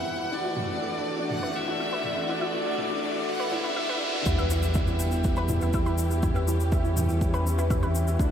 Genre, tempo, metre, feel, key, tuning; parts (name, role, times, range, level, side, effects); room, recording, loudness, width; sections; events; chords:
piano and strings electronica; 122 BPM; 4/4; straight; E dorian; A4 = 442 Hz
bright violin; melody; 0.0-4.3 s; D5 to F#5; -33 LUFS; equal; tape echo
dark studio string section; sustained chords; 0.0-8.3 s; E3 to G4; -34 LUFS; equal
felt-muted upright piano; riff; 0.0-8.3 s; D4 to B5; -31 LUFS; equal; wide subtle chorus, tape echo
riser and sub drop; sound effects; 0.5-6.2 s; -35 LUFS; equal
analog pluck; arpeggios; 0.3-8.2 s; E3 to E5; -36 LUFS; left 1 dB; chorus, sidechain pumping, tape echo
electronic toms and shaker; drums; 0.6-8.3 s; -36 LUFS; right 1 dB; overdrive
dark detuned saw bass; bass; 4.3-8.3 s; D2 to E2; -26 LUFS; equal; sidechain pumping
electronic kick drum; drums; 4.3-8.3 s; -27 LUFS; equal; overdrive
wet huge ambient reverb, RT60 8.0 s; dreamy mix soaked in reverb, high-pass filter; -24 LUFS; side -9 dB against mid
0.0-4.3 A section; 4.3-8.3 B section
build-up 0.0-4.3; filter sweep on synth arpeggio sound 0.0-4.3; filter sweep 0.0-4.3; riser 0.5-4.3; drop 4.3-8.3; impact 4.3-6.2
0.3 Dadd9; 4.3 Em